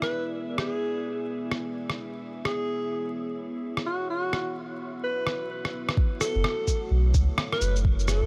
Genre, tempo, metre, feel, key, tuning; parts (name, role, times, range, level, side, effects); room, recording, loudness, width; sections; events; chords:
future garage; 128 BPM; 4/4; swing 62% on 16ths; F# minor; A4 = 440 Hz
breathy alto saxophone; melody; 0.0-8.3 s; F#4 to B4; -34 LUFS; equal; tape echo
deep dark ambient pad; sustained chords; 0.0-8.3 s; A3 to G#5; -37 LUFS; equal; chorus, built-in reverb, sidechain pumping
electronic rim click, cabasa and shaker; drums; 0.0-8.2 s; -33 LUFS; equal
drifting glass-harmonics texture; texture; 0.0-6.0 s; E4 to E5; -48 LUFS; equal; chorus, built-in reverb
electronic kick drum; drums; 6.0-8.0 s; -26 LUFS; equal; overdrive
warm sub bass; bass; 6.4-8.3 s; F#1 to C#2; -26 LUFS; equal; sidechain pumping
light reverb; vinyl crackle; -28 LUFS; mono
0.0-6.0 A section; 6.0-8.3 B section
0.0 E7; 2.2 C#m7; 6.0 F#m7